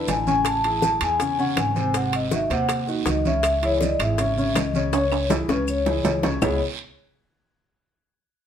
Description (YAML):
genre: Afro-Cuban jazz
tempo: 161 BPM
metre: 4/4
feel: straight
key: C# minor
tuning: A4 = 440 Hz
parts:
  - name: vibraphone with soft mallets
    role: melody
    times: 0.0-6.6 s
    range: B4 to A5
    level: -24 LUFS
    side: left 2 dB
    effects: none
  - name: warm concert grand piano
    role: accompaniment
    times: 0.0-6.6 s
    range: B#2 to C#5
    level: -26 LUFS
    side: equal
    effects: none
  - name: upright bass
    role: bass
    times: 0.0-6.6 s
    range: G#1 to E2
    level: -28 LUFS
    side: right 1 dB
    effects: none
  - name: congas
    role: percussion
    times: 0.1-6.5 s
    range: none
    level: -30 LUFS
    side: left 1 dB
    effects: none
  - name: guiro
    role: percussion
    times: 0.1-6.5 s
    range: none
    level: -36 LUFS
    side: right 7 dB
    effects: none
  - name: maracas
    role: percussion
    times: 0.1-6.5 s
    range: none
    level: -40 LUFS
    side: left 6 dB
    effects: none
  - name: timbales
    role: percussion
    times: 0.1-6.5 s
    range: none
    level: -28 LUFS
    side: right 6 dB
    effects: none
  - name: bongos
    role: percussion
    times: 0.4-6.5 s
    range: none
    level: -29 LUFS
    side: left 5 dB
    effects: none
  - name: claves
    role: percussion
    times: 0.5-6.5 s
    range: none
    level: -35 LUFS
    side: left 6 dB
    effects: none
room: moderate studio reverb, RT60 0.7 s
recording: band playing live in one room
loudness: -20 LUFS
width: side -9 dB against mid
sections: 0.0-6.4 A section; 6.4-7.9 B section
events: drum fill 4.9-6.4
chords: 0.5 Amaj7; 1.9 G#7; 3.4 C#m; 6.4 C#m7